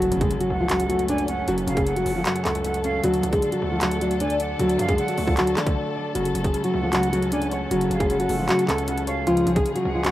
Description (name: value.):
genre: hip hop, trap.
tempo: 154 BPM.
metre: 4/4.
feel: half-time.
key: F# harmonic minor.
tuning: A4 = 438 Hz.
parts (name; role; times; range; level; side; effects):
nylon-string guitar; melody; 0.0-10.1 s; E#3 to D5; -23 LUFS; equal; low-pass filter, tape echo.
warm grand piano; accompaniment; 0.0-10.1 s; F#2 to D5; -29 LUFS; left 2 dB; low-pass filter.
dark studio string section; sustained chords; 0.0-10.1 s; E#3 to A4; -33 LUFS; left 1 dB; none.
distorted 808-style bass; bass; 0.0-10.1 s; F#1 to D3; -30 LUFS; equal; distortion.
trap drum kit; drums; 0.0-10.1 s; handclaps, hi-hat, kick drum; -27 LUFS; equal; none.
impact; sound effects; 0.0-1.5 s; none; -33 LUFS; equal; none.
silver concert flute; second line; 0.5-10.1 s; E#5 to G#5; -32 LUFS; right 4 dB; tape echo.
room: light reverb.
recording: rough home demo mix.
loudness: -20 LUFS.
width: side -14 dB against mid.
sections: 0.0-10.1 A section.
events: impact 0.0-1.5; break 5.8-6.2.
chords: 0.0 F#m; 3.0 D; 6.2 F#m; 9.3 C#.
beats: 0.31 0.70 1.09 | 1.48 1.87 2.26 2.65 | 3.04 3.42 3.81 4.20 | 4.59 4.98 5.37 5.76 | 6.15 6.54 6.93 7.32 | 7.71 8.10 8.49 8.88 | 9.27 9.66 10.05.